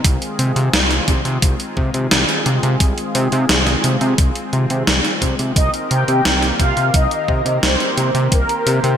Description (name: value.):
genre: synthwave.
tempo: 87 BPM.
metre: 4/4.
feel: straight.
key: unclear.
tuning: A4 = 440 Hz.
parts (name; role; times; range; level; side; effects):
warm analog pad; sustained chords; 0.0-9.0 s; Eb3 to C5; -24 LUFS; left 1 dB; chorus, sidechain pumping.
fat analog bass; bass; 0.0-9.0 s; C2 to C3; -18 LUFS; equal; tube saturation, sidechain pumping.
electronic kick drum; drums; 0.0-8.5 s; none; -17 LUFS; equal; none.
gated 80s digital drum machine; drums; 0.0-9.0 s; hi-hat, snare drum; -18 LUFS; equal; gated reverb, gated reverb snare.
mellow synth brass; melody; 5.6-9.0 s; Bb4 to G5; -19 LUFS; equal; chorus, digital delay.
room: light reverb, digital ambience.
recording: bright 1980s-style digital production.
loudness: -14 LUFS.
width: side -8 dB against mid.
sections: 0.0-9.0 A section.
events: none.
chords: 0.0 Ab6/C; 5.6 Cm7.